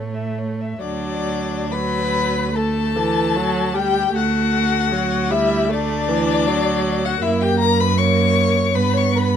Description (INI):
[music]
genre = classical, slow romantic movement for string quartet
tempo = 63-81 BPM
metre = 4/4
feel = rubato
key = D major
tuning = A4 = 442 Hz
[part]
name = dark violin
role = second line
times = 0.0-9.3 s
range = D4 to E5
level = -24 LUFS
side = left 3 dB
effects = none
[part]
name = dark viola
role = accompaniment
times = 0.0-9.4 s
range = E3 to B3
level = -22 LUFS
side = right 2 dB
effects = none
[part]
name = dark cello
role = bass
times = 0.0-9.4 s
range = D2 to A2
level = -23 LUFS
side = right 4 dB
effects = none
[part]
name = dark violin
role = melody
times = 0.8-9.4 s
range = D5 to C#6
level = -22 LUFS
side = left 10 dB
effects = none
[sound]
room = moderate large studio reverb, RT60 0.9 s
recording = minimal, uncompressed stereo recording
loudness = -17 LUFS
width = side -8 dB against mid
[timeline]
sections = 0.8-9.4 A section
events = none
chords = 0.0 A; 0.8 D; 7.2 F#; 8.8 G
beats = | 0.80 1.71 2.55 3.35 | 4.14 4.92 5.70 6.48 | 7.23 7.98 8.75